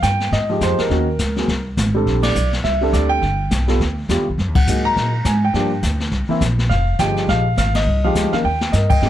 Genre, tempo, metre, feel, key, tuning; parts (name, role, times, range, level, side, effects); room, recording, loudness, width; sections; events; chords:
jazz piano trio; 207 BPM; 4/4; swing 59% on 8ths; F minor; A4 = 441 Hz
warm grand piano; melody; 0.0-9.1 s; C3 to Bb5; -19 LUFS; right 1 dB
upright bass; bass; 0.0-9.1 s; F1 to Bb2; -19 LUFS; equal
jazz brush drum kit; drums; 0.0-9.1 s; brushed snare drum, crash cymbal, hi-hat, kick drum, ride cymbal, snare drum; -22 LUFS; left 2 dB
little or no reverb; -16 LUFS; side -12 dB against mid
0.0-9.0 A section
band accent 2.2, 4.5, 7.7; drum fill 8.4
0.0 Fm9; 0.9 Ebm7; 1.5 Ab; 2.1 Bbmaj13; 3.2 G7; 4.4 Gb69; 5.5 Gm7; 6.1 C7; 6.7 Fm9; 8.4 Eb